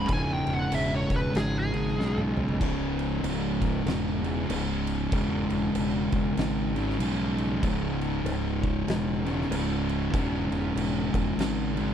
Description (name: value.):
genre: stoner and doom metal.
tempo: 96 BPM.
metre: 4/4.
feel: swing 60% on 8ths.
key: C# minor.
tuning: A4 = 440 Hz.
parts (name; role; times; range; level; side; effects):
fuzz lead guitar; melody; 0.0-2.2 s; G#4 to B5; -31 LUFS; equal; wah, distortion, slapback echo.
fuzz guitar; riff; 0.0-11.9 s; C#2 to C#3; -28 LUFS; equal; distortion.
fuzz fingered electric bass; bass; 0.0-11.9 s; C#1 to B1; -31 LUFS; equal; overdrive, tube saturation.
oversized low-tuned drum kit; drums; 0.1-11.9 s; crash cymbal, kick drum, snare drum, toms; -33 LUFS; equal; none.
room: little or no reverb.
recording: dry, close 1970s-style studio recording.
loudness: -25 LUFS.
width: side -9 dB against mid.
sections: 0.0-2.6 A section; 2.6-11.9 B section.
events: lead electric guitar solo 0.0-2.6; drum fill 2.0-2.6.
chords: 0.0 C#m.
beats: | 0.09 0.72 1.35 1.98 | 2.60 3.23 3.86 4.49 | 5.12 5.75 6.37 7.00 | 7.63 8.25 8.88 9.51 | 10.13 10.76 11.38.